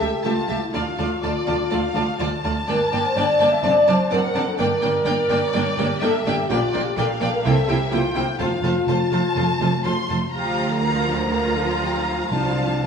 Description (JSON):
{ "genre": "quick classical-period movement for symphony orchestra", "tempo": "125 BPM", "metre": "4/4", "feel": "rubato", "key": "D minor, F major from 6.5 s", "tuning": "A4 = 445 Hz", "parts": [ { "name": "rich studio violin section", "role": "melody", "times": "0.0-12.9 s", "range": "D5 to C6", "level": "-27 LUFS", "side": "left 2 dB", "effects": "none" }, { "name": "rich studio violin section", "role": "second line", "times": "0.0-12.9 s", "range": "C5 to Bb5", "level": "-28 LUFS", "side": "left 2 dB", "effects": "none" }, { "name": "warm studio viola section", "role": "accompaniment", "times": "0.0-12.9 s", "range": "F3 to G4", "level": "-27 LUFS", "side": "right 2 dB", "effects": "none" }, { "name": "dark French horn section", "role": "sustained chords", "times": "0.0-12.9 s", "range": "C4 to E5", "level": "-23 LUFS", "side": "left 2 dB", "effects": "none" }, { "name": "warm studio cello section", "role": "bass", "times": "0.0-12.9 s", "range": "C2 to C3", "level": "-27 LUFS", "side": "right 3 dB", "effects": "none" }, { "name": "warm studio double bass section", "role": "bass", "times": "0.0-12.9 s", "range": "F1 to D2", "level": "-28 LUFS", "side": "right 4 dB", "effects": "none" }, { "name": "timpani", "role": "percussion", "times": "8.4-9.1, 12.3-12.9 s", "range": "F2 to C3", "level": "-30 LUFS", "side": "right 1 dB", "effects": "none" } ], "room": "wet scoring stage reverb, RT60 1.7 s", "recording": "studio reverb", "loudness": "-18 LUFS", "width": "side -6 dB against mid", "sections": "0.0-12.9 A section", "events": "none", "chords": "0.0 A7/C#; 0.7 Dm; 2.7 Gm; 3.6 D7/F#; 4.6 Gm; 6.5 Gm7/Bb; 7.4 C7; 8.4 F; 10.3 Bb/D; 12.3 F/C", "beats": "0.25 | 0.74 1.23 1.72 2.20 | 2.69 3.17 3.64 4.12 | 4.58 5.06 5.54 6.02 | 6.50 6.97 7.45 7.92 | 8.40 8.88 9.37 9.85 | 10.34 10.82 11.31 11.80 | 12.31 12.82" }